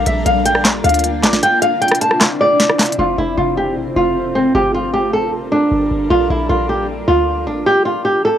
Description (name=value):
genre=hip hop, trap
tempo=154 BPM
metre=4/4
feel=half-time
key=unclear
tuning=A4 = 442 Hz
part: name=flamenco guitar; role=melody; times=0.0-8.4 s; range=C4 to A5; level=-15 LUFS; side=equal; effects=low-pass filter, cassette tape, analog delay
part: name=granular cloud pad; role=sustained chords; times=0.0-7.6 s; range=C3 to Bb4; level=-22 LUFS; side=equal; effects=built-in reverb
part: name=short 808-style bass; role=bass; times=0.0-7.7 s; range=F1 to D2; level=-22 LUFS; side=equal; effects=none
part: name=trap drum kit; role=drums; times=0.1-3.0 s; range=handclaps, hi-hat, rim click, snare drum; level=-14 LUFS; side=equal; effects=cassette tape
room=moderate booth ambience, RT60 0.2 s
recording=home recording on cassette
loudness=-13 LUFS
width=side -10 dB against mid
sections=0.0-3.0 A section; 3.0-8.4 B section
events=kick muted 1.4-3.0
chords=0.0 Bb; 1.4 Cadd9; 3.0 F; 4.5 Gmadd9; 6.1 Bb; 7.7 N.C.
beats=0.26 0.65 1.04 | 1.43 1.82 2.21 2.60 | 2.99 3.38 3.77 4.16 | 4.54 4.93 5.33 5.71 | 6.10 6.49 6.88 7.27 | 7.66 8.05